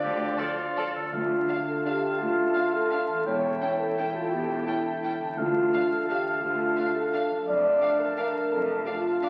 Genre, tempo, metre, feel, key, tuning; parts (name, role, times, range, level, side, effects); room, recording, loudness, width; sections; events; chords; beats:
classical; 169 BPM; 3/4; uneven beats, rubato; D minor; A4 = 440 Hz
rich studio violin section; melody; 0.0-9.3 s; D5 to D6; -44 LUFS; equal
clear clarinet; second line; 0.0-9.3 s; D4 to F4; -40 LUFS; equal
small flute group; second line; 0.0-9.3 s; D5 to A5; -42 LUFS; equal
warm oboe; second line; 0.0-9.3 s; F4 to G5; -34 LUFS; equal
warm bassoon; accompaniment; 0.0-9.3 s; F3 to A3; -38 LUFS; equal
mellow French horn section; sustained chords; 0.0-9.3 s; D3 to D5; -29 LUFS; equal
concert harp; arpeggios; 0.0-9.3 s; D3 to D5; -44 LUFS; equal
rich studio cello section; bass; 0.0-8.8 s; D2 to D3; -42 LUFS; equal
rich studio double bass section; bass; 0.0-8.8 s; E1 to D2; -44 LUFS; equal
warm studio violin section; second line; 0.4-9.3 s; A4 to G5; -39 LUFS; equal
rich studio viola section; accompaniment; 0.4-9.3 s; F3 to F4; -44 LUFS; equal
timpani; percussion; 1.1-1.6, 5.4-5.9 s; D3; -46 LUFS; equal
wet scoring stage reverb, RT60 1.6 s; very old 78 rpm record, vinyl crackle; -27 LUFS; mono
0.0-1.1 A section; 1.1-9.3 A section
0.0 Dm; 3.3 A7/E; 5.4 Dm; 7.5 Dm/F
| 0.03 0.39 0.77 | 1.13 1.49 1.85 | 2.20 2.55 2.91 | 3.26 3.61 3.98 | 4.32 4.67 5.04 | 5.38 5.73 6.09 | 6.42 6.77 7.13 | 7.48 7.82 8.18 | 8.53 8.87 9.22